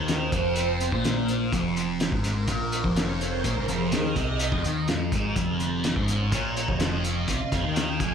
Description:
psychedelic rock; 125 BPM; 4/4; straight; F minor; A4 = 438 Hz
phased string machine; sustained chords; 0.0-8.1 s; Ab4 to Ab5; -32 LUFS; right 4 dB; ensemble chorus, phaser
thick fuzz guitar; riff; 0.0-8.1 s; F2 to F3; -26 LUFS; equal; distortion, phaser
growling picked electric bass; bass; 0.0-8.1 s; F1 to F2; -31 LUFS; equal; overdrive
cloth-damped thuddy drum kit; drums; 0.1-8.1 s; hi-hat, kick drum, snare drum; -29 LUFS; equal
congas; percussion; 5.5-8.1 s; -42 LUFS; right 6 dB
moderate large studio reverb, RT60 0.9 s; band playing live in one room; -23 LUFS; side -7 dB against mid
0.0-8.1 A section
string machine solo 0.0-8.1
0.0 Fm

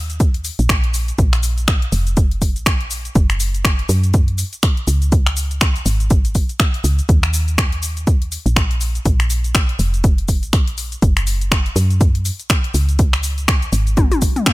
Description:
afro house; 122 BPM; 4/4; swing 58% on 16ths; Eb minor; A4 = 443 Hz
woody FM bass; bass; 0.0-14.3 s; F1 to Gb2; -18 LUFS; equal; sidechain pumping
house drum kit; drums; 0.1-14.5 s; finger snaps, hi-hat, shaker, toms; -21 LUFS; left 2 dB; overdrive
electronic kick drum; drums; 0.2-14.5 s; -15 LUFS; equal; overdrive
digital ambience; faint mains hum; -14 LUFS; side -19 dB against mid
0.0-14.5 A section
drum fill 14.0-14.5

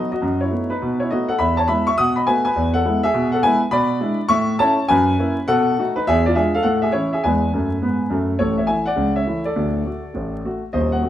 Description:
jazz, stride piano; 206 BPM; 4/4; swing 65% on 8ths; E major, A major from 3.7 s; A4 = 440 Hz
warm concert grand piano; solo; 0.0-11.1 s; D1 to D#6; -17 LUFS; equal
wet studio reverb, RT60 0.9 s; band playing live in one room, vinyl crackle; -17 LUFS; side -12 dB against mid
0.0-8.4 A section; 8.4-11.1 B section
0.2 B7/F#; 1.4 E; 2.0 B7; 2.6 E; 3.7 E7/B; 4.3 A; 4.9 F#7; 5.5 B7; 6.1 E7b9; 6.6 A; 7.2 E; 8.4 A; 9.0 A/C#; 9.6 D

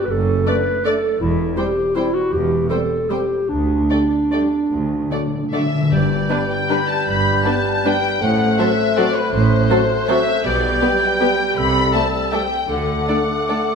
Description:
classical; 139-175 BPM; 3/4; rubato; G major; A4 = 440 Hz
dark clarinet; second line; 0.0-13.8 s; D4 to C5; -22 LUFS; equal
muted chamber cello section; bass; 0.1-13.0 s; D2 to D3; -25 LUFS; right 3 dB
muted studio double bass section; bass; 0.1-13.0 s; E1 to D2; -25 LUFS; right 3 dB
muted studio violin section; melody; 0.5-13.8 s; B4 to B5; -22 LUFS; left 3 dB
muted studio violin section; second line; 0.5-13.6 s; D4 to E5; -26 LUFS; left 2 dB
muted studio viola section; accompaniment; 0.5-13.6 s; F#3 to G4; -26 LUFS; right 1 dB
dark French horn section; sustained chords; 0.5-13.6 s; F#3 to D4; -28 LUFS; left 3 dB
timpani; percussion; 4.7-6.5 s; G2 to D3; -22 LUFS; left 4 dB
silver concert flute; second line; 5.9-13.8 s; D6 to G6; -24 LUFS; equal
mellow bassoon; accompaniment; 5.9-13.8 s; G3 to A3; -24 LUFS; equal
wet scoring stage reverb, RT60 1.4 s; -16 LUFS; side -6 dB against mid
0.0-5.9 A section; 5.9-13.8 B section
timpani fill 4.7-5.9
0.1 D/F#; 1.2 C/E; 3.5 Dsus4; 4.7 D; 5.9 G; 8.2 F#dim/A; 10.4 G/B; 11.6 Am7/C; 12.7 D

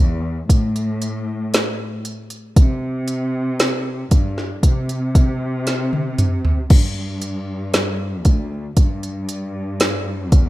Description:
pop ballad; 58 BPM; 4/4; straight; A4 = 439 Hz
muted studio cello section; bass; 0.0-10.5 s; D2 to C3; -23 LUFS; equal
smooth R&B drum kit; drums; 0.5-10.5 s; crash cymbal, hi-hat, kick drum, snare drum, toms; -15 LUFS; equal
little or no reverb; rough home demo mix; -17 LUFS; side -16 dB against mid
0.0-10.5 A section
drum fill 5.7-6.7

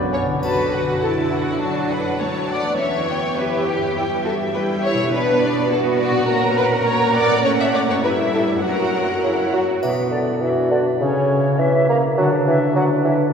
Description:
cinematic, playful, whimsical film cue; 102 BPM; 2/4; straight; D major, B minor from 5.1 s; A4 = 441 Hz
small flute group; second line; 0.0-0.1, 9.2-13.1 s; C#5 to A#5; -28 LUFS; equal
rich studio viola section; accompaniment; 0.0-9.6 s; D3 to B3; -26 LUFS; right 2 dB
concert harp; arpeggios; 0.0-13.3 s; E2 to E5; -24 LUFS; left 2 dB
warm studio cello section; bass; 0.0-9.8 s; F#2 to A#4; -23 LUFS; right 2 dB
rich studio violin section; melody; 0.1-9.6 s; B4 to A#5; -28 LUFS; left 1 dB
warm symphonic violin section; second line; 0.1-9.5 s; F#4 to E5; -23 LUFS; left 2 dB
mellow bassoon; accompaniment; 0.1-0.4, 9.2-13.2 s; C#3 to C#4; -21 LUFS; right 1 dB
triangle; percussion; 0.4-1.6, 9.8-11.0 s; -46 LUFS; right 1 dB
mellow clarinet; second line; 9.8-13.3 s; B3 to F#4; -27 LUFS; right 1 dB
wet cathedral reverb, RT60 4.9 s; recorded in a church or concert hall; -16 LUFS; side -6 dB against mid
0.4-9.8 A section; 9.8-13.3 B section
0.4 D; 1.6 D/F#; 2.8 Em; 4.0 Em/G; 5.1 Bm; 6.3 F#/A#; 7.5 F#m/A; 8.0 Em/G; 8.6 F#; 9.8 Bm; 11.0 F#7/C#; 12.2 Bm/D

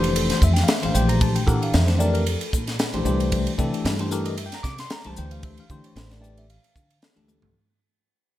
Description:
electric jazz fusion; 114 BPM; 4/4; swing 54% on 16ths; A4 = 438 Hz
bell-like tine electric piano; accompaniment; 0.0-7.5 s; E3 to D6; -25 LUFS; left 2 dB; fast stereo tremolo, phaser
upright bass; bass; 0.0-7.5 s; F1 to D3; -23 LUFS; equal
crisp fusion drum kit; drums; 0.0-7.5 s; hi-hat, kick drum, ride cymbal, snare drum, toms; -25 LUFS; equal; gated reverb
light reverb, studio reverb; bright 1980s-style digital production; -19 LUFS; side -14 dB against mid
0.0-7.5 A section
fade-out 0.0-7.5; drum fill 7.3
0.0 Fmaj9; 0.9 Bbmaj9#11; 3.1 C13; 5.2 Dm11

